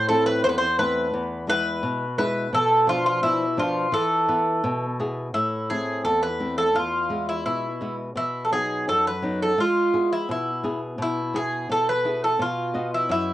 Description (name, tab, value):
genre	greek folk, Greek bouzouki band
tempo	85 BPM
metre	2/4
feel	straight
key	unclear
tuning	A4 = 440 Hz
part	Greek bouzouki	melody	0.0-13.3 s	E4 to C5	-22 LUFS	equal	cassette tape
part	flamenco guitar	accompaniment	0.0-13.3 s	E2 to D#5	-28 LUFS	left 1 dB	cassette tape
room	wet booth ambience, RT60 0.2 s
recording	home recording on cassette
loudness	-21 LUFS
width	side -14 dB against mid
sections	0.0-5.3 A section; 5.3-13.3 B section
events	none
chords	0.0 Am; 1.1 E; 2.5 Bdim; 3.9 E; 5.3 Am; 6.7 E; 8.2 B; 9.6 E; 12.4 B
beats	0.43 | 1.13 1.83 | 2.53 3.23 | 3.93 4.64 | 5.34 6.04 | 6.75 7.45 | 8.16 8.86 | 9.57 10.27 | 10.98 11.68 | 12.39 13.09